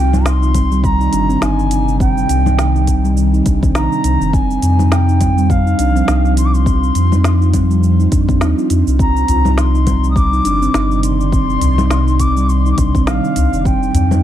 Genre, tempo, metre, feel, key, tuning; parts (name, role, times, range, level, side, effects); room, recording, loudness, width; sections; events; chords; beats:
organic downtempo; 103 BPM; 4/4; swing 57% on 16ths; C minor; A4 = 440 Hz
bright reedy bansuri; melody; 0.0-14.2 s; F5 to Eb6; -21 LUFS; left 1 dB; digital delay
ethereal airy pad; sustained chords; 0.0-14.2 s; C3 to D5; -22 LUFS; right 1 dB; ensemble chorus, built-in reverb, phaser, sidechain pumping
warm sub bass; bass; 0.0-14.2 s; F1 to F2; -14 LUFS; equal; sidechain pumping
steel tongue drum; arpeggios; 0.1-14.2 s; G3 to Eb4; -19 LUFS; right 1 dB; digital delay
organic electronic drum kit; drums; 0.1-14.2 s; congas, hi-hat, shaker, snare drum; -22 LUFS; left 1 dB
electronic kick drum; drums; 0.5-13.8 s; -16 LUFS; equal; overdrive
udu; percussion; 9.3-14.1 s; -20 LUFS; left 1 dB
little or no reverb; -11 LUFS; side -11 dB against mid
0.0-14.2 A section
0.0 Cmadd9; 4.3 F5; 9.0 Cmadd9; 13.7 F5
0.25 0.84 1.42 | 2.00 2.58 3.17 3.75 | 4.33 4.92 5.50 6.08 | 6.66 7.25 7.83 8.41 | 8.99 9.57 10.16 10.74 | 11.32 11.90 12.49 13.07 | 13.65